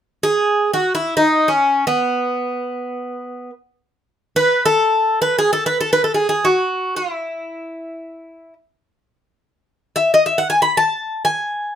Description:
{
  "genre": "greek folk",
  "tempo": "free time",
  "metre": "none",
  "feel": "none",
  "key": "E major",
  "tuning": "A4 = 440 Hz",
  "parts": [
    { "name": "Greek bouzouki", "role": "melody", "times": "0.2-11.8 s", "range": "B3 to B5", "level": "-16 LUFS", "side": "equal", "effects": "none" }
  ],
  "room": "moderate studio reverb, RT60 0.5 s",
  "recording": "none",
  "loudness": "-15 LUFS",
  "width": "side -9 dB against mid",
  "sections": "0.0-11.8 A section",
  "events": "none",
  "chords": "none",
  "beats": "free time"
}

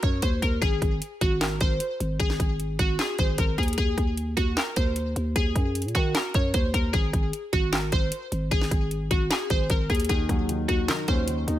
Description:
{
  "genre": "hip hop, trap",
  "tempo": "152 BPM",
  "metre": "4/4",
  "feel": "half-time",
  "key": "unclear",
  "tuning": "A4 = 436 Hz",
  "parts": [
    { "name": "glassy wavetable pluck", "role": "melody", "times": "0.0-11.6 s", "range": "Gb4 to Db5", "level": "-28 LUFS", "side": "left 1 dB", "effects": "chorus, digital delay" },
    { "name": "growling 808-style bass", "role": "bass", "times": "0.0-11.6 s", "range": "Ab1 to Eb3", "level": "-28 LUFS", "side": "equal", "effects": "none" },
    { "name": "trap drum kit", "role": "drums", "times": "0.0-11.6 s", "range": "handclaps, hi-hat, kick drum, snare drum", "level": "-25 LUFS", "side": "equal", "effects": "none" },
    { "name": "dark concert grand piano", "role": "accompaniment", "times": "10.1-11.6 s", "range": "Eb3 to Eb4", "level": "-30 LUFS", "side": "left 1 dB", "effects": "none" }
  ],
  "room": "digital ambience",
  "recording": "none",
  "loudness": "-23 LUFS",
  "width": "side -13 dB against mid",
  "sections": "0.0-11.6 A section",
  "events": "none",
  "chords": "0.0 Ebm; 0.6 Ab; 3.8 Ebm; 6.9 Ab; 10.1 Ebm7",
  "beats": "0.23 | 0.62 1.01 1.41 1.80 | 2.20 2.59 2.99 3.38 | 3.78 4.17 4.57 4.96 | 5.36 5.75 6.15 6.54 | 6.94 7.33 7.73 8.12 | 8.52 8.91 9.30 9.70 | 10.09 10.49 10.88 11.28"
}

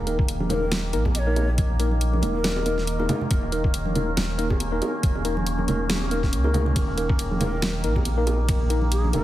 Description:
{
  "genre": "deep dubstep",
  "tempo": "139 BPM",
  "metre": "4/4",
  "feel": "swing 55% on 16ths, half-time",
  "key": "unclear",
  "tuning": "A4 = 440 Hz",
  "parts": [
    { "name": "overtone-sweeping drone", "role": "sustained chords", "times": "0.0-9.2 s", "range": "Eb3 to Eb4", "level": "-30 LUFS", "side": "equal", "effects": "chorus, built-in reverb" },
    { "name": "soft dub sub bass", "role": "bass", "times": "0.0-9.2 s", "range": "Eb1 to Db2", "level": "-25 LUFS", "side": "equal", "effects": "none" },
    { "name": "tine electric piano", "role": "stabs", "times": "0.1-9.2 s", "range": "Bb3 to Bb4", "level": "-29 LUFS", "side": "left 2 dB", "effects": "medium stereo tremolo, vintage 12-bit sampler grit, dub echo" },
    { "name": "dubstep drum kit", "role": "drums", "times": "0.1-9.2 s", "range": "hi-hat, ride cymbal, snare drum", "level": "-28 LUFS", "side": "equal", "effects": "studio reverb" },
    { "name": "electronic kick drum", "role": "drums", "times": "0.2-8.6 s", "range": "none", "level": "-24 LUFS", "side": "equal", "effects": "studio reverb" },
    { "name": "congas and bongos", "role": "percussion", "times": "0.4-9.2 s", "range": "none", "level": "-30 LUFS", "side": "right 2 dB", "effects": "dub echo" },
    { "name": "breathy bright low ney", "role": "melody", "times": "0.5-2.9, 7.4-9.2 s", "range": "Ab4 to Eb5", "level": "-33 LUFS", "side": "left 1 dB", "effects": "dub echo" }
  ],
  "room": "light reverb",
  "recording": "heavily compressed radio sound",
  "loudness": "-21 LUFS",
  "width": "side -14 dB against mid",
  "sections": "0.0-9.2 A section",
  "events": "none",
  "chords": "0.0 Eb5",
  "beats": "0.28 0.72 1.15 | 1.58 2.01 2.44 2.88 | 3.31 3.74 4.17 4.60 | 5.03 5.46 5.90 6.33 | 6.76 7.19 7.62 8.05 | 8.49 8.92"
}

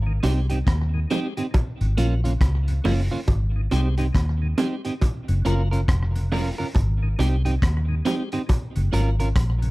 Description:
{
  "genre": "roots reggae",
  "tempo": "69 BPM",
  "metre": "4/4",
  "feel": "swing 61% on 16ths",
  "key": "Ab major",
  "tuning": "A4 = 436 Hz",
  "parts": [
    { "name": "vintage muted fingered electric bass", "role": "bass", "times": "0.0-9.7 s", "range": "F1 to Eb2", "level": "-21 LUFS", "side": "equal", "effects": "none" },
    { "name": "tonewheel organ", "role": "accompaniment", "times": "0.1-9.7 s", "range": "Gb2 to G4", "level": "-32 LUFS", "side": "left 3 dB", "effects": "overdrive, slow rotary speaker, slapback echo, plate reverb" },
    { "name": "clean electric guitar", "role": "accompaniment", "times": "0.2-9.3 s", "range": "Bb3 to Bb4", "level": "-28 LUFS", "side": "right 3 dB", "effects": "tape echo, plate reverb" },
    { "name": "crunchy breakbeat drum kit", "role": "drums", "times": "0.2-9.7 s", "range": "hi-hat, kick drum, rim click", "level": "-24 LUFS", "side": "equal", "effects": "none" },
    { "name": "bongos", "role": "percussion", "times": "0.2-8.7 s", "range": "none", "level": "-28 LUFS", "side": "right 3 dB", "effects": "none" }
  ],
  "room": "light reverb",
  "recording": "dark, warm production",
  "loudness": "-20 LUFS",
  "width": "side -20 dB against mid",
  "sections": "0.0-9.7 A section",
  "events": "none",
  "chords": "0.0 Abmaj7; 1.5 Gbmaj7; 3.3 Abmaj7; 5.0 Gbmaj7; 6.8 Abmaj7; 8.5 Gbmaj7",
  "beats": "0.67 1.54 2.41 | 3.28 4.15 5.02 5.89 | 6.76 7.63 8.50 9.37"
}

